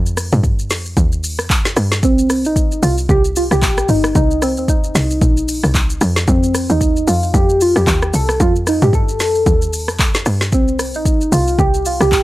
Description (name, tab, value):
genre	amapiano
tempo	113 BPM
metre	4/4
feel	swing 58% on 16ths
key	C dorian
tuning	A4 = 440 Hz
part	woody log drum bass	bass	0.0-12.2 s	G1 to G2	-18 LUFS	equal	none
part	deep house drum kit	drums	0.1-12.2 s	handclaps, hi-hat, kick drum, rim click, shaker, snare drum, toms	-16 LUFS	equal	none
part	soft struck synth lead	melody	2.0-12.2 s	C4 to A4	-17 LUFS	equal	chorus, phaser, tape echo
room	little or no reverb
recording	dry, gritty hardware recording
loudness	-13 LUFS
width	side -17 dB against mid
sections	0.0-12.2 A section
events	none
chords	0.0 F5; 2.0 Cm7; 6.0 F7; 10.5 Cm7